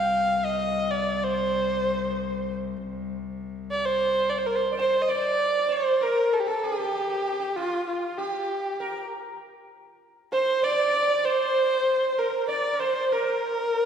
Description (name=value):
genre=turkish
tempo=195 BPM (eighths)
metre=9/8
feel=straight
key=C makam huseyni, Bb makam rast from 4.8 s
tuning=A4 = 440 Hz
part: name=rich kamancheh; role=melody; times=0.0-13.9 s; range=F4 to F5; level=-24 LUFS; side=right 1 dB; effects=none
part: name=rich cello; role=drone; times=0.0-4.8 s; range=C2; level=-33 LUFS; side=left 6 dB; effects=none
part: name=sitar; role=second line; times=4.7-13.9 s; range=F4 to D5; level=-29 LUFS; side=right 2 dB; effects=none
room=wet concert hall reverb, RT60 2.4 s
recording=heard from further back in the room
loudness=-23 LUFS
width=side -8 dB against mid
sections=0.0-4.8 A section; 4.8-13.9 B section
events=none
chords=none